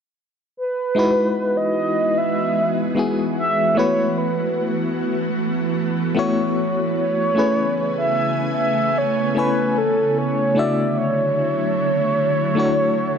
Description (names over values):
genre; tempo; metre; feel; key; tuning
R&B; 75 BPM; 4/4; straight; E major; A4 = 444 Hz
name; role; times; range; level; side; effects
mellow horn-like synth lead; melody; 0.6-13.2 s; A4 to E5; -21 LUFS; right 2 dB; chorus, digital delay
FM electric piano with tremolo; accompaniment; 0.9-13.2 s; G#3 to G#5; -22 LUFS; left 3 dB; none
ethereal airy pad; sustained chords; 1.5-13.2 s; C#3 to G#5; -24 LUFS; right 2 dB; ensemble chorus, built-in reverb
room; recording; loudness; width
moderate lush hall reverb, RT60 2.6 s; dark, warm production; -18 LUFS; side -7 dB against mid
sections
1.0-13.2 A section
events
none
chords
0.0 N.C.; 1.0 Emaj9; 3.8 B7sus4; 7.4 Amaj9; 10.6 Dmaj9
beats
0.17 | 0.97 1.77 2.57 3.37 | 4.17 4.97 5.77 6.57 | 7.37 8.17 8.97 9.77 | 10.57 11.37 12.17 12.97